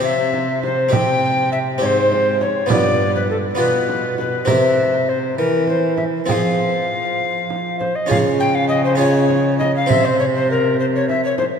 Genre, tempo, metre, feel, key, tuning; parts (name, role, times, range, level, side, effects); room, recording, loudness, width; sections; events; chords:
classical, renaissance-style consort dance; 67 BPM (dotted quarters); 6/8; straight; A4 = 439 Hz
alto recorder; melody; 0.0-11.4 s; A4 to G5; -19 LUFS; left 2 dB
harpsichord; accompaniment; 0.0-11.6 s; G2 to C5; -20 LUFS; equal
warm cello; bass; 0.0-11.6 s; G2 to F3; -22 LUFS; right 1 dB
frame drum; percussion; 0.3-11.6 s; -26 LUFS; right 4 dB
wet church reverb, RT60 3.8 s; -15 LUFS; side -7 dB against mid
0.0-8.1 A section; 8.1-11.6 A section
0.0 C; 2.7 G7; 4.5 C7; 6.3 Fm; 8.1 Db; 9.9 N.C.